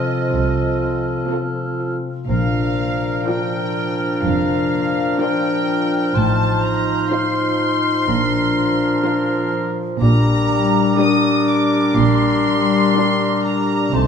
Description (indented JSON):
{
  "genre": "classical, slow romantic movement for symphony orchestra",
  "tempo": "62 BPM",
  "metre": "4/4",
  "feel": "rubato",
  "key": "Bb major, G minor from 10.0 s",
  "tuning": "A4 = 439 Hz",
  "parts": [
    { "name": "warm chamber violin section", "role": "melody", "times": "0.0-14.1 s", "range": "Eb5 to Eb6", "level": "-24 LUFS", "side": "left 1 dB", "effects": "none" },
    { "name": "clear clarinet", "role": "second line", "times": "0.0-14.1 s", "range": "D4 to F4", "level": "-24 LUFS", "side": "right 1 dB", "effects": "none" },
    { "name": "dark symphonic violin section", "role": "second line", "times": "0.0-13.7 s", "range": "D4 to C5", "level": "-29 LUFS", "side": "left 3 dB", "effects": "none" },
    { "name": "mellow cor anglais", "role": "second line", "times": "0.0-14.1 s", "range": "A4 to C5", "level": "-28 LUFS", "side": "right 3 dB", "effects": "none" },
    { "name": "mellow hollow silver concert flute", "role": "second line", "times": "0.0-14.1 s", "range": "C6 to F6", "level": "-27 LUFS", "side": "equal", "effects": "none" },
    { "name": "dark symphonic viola section", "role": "accompaniment", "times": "0.0-13.7 s", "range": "F3 to Eb4", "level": "-27 LUFS", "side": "right 1 dB", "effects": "none" },
    { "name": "mellow bassoon", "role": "accompaniment", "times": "0.0-14.1 s", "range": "F3 to A3", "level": "-26 LUFS", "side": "right 3 dB", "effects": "none" },
    { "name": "warm French horn section", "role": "sustained chords", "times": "0.0-14.1 s", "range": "F3 to Eb4", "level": "-24 LUFS", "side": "left 4 dB", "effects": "none" },
    { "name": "concert harp", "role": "arpeggios", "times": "0.0-14.1 s", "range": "A2 to A4", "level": "-23 LUFS", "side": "left 6 dB", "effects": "none" },
    { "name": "dark symphonic cello section", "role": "bass", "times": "0.3-14.1 s", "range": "F2 to C3", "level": "-24 LUFS", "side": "right 4 dB", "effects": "none" },
    { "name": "dark symphonic double bass section", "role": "bass", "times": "0.3-14.1 s", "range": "F1 to C2", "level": "-23 LUFS", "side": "right 5 dB", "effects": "none" }
  ],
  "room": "wet recital hall reverb, RT60 1.6 s",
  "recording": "none",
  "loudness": "-16 LUFS",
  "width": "side -7 dB against mid",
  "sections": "0.0-14.1 A section",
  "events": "none",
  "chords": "0.0 F7/C; 2.3 Bb; 6.2 F7/A; 8.1 Bb; 10.0 Gm/Bb"
}